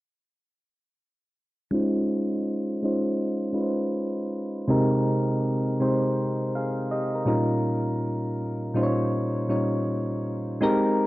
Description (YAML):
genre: hip hop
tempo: 81 BPM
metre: 4/4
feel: swing 61% on 16ths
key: unclear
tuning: A4 = 440 Hz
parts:
  - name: soft electric-piano-like synth keys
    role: accompaniment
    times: 1.7-11.1 s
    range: Bb2 to F5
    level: -23 LUFS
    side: equal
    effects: chorus, cassette tape, low-pass filter
room: moderate spring reverb, RT60 1.3 s, digital ambience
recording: dark, warm production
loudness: -23 LUFS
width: side -18 dB against mid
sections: 1.7-11.1 A section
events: filter sweep on synth keys 1.7-11.1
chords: 1.7 Dbmaj9; 4.7 Abmaj9/C; 7.3 Eb9/Bb